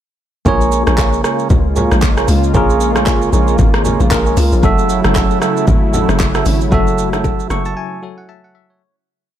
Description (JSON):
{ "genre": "amapiano", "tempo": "115 BPM", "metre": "4/4", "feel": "swing 58% on 16ths", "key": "unclear", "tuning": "A4 = 439 Hz", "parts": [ { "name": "bell-like tine electric piano", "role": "accompaniment", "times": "0.5-8.9 s", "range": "Gb3 to Db6", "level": "-20 LUFS", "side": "left 3 dB", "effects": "medium stereo tremolo" }, { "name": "warm analog pad", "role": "sustained chords", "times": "0.5-8.8 s", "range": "Db3 to F4", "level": "-20 LUFS", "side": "right 1 dB", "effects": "chorus, sidechain pumping" }, { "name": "mellow tonewheel organ", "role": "stabs", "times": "0.5-7.7 s", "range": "Gb4 to Fb5", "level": "-20 LUFS", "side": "right 8 dB", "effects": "ping-pong delay" }, { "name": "hollow log drum bass", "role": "bass", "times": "0.5-7.7 s", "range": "Gb1 to Db2", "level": "-16 LUFS", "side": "equal", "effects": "none" }, { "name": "deep house drum kit", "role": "drums", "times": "0.5-7.8 s", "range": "handclaps, hi-hat, kick drum, rim click, shaker", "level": "-17 LUFS", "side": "equal", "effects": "none" }, { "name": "congas and bongos", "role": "percussion", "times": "0.5-7.6 s", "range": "none", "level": "-23 LUFS", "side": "left 3 dB", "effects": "none" } ], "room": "little or no reverb", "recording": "none", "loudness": "-11 LUFS", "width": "side -11 dB against mid", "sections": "0.5-8.8 drop", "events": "drop 0.5-8.8; fade-out 6.7-8.8; tine electric piano fill 7.2-8.8; break 7.8-8.8", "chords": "0.5 Bbm7; 4.6 Gbm7" }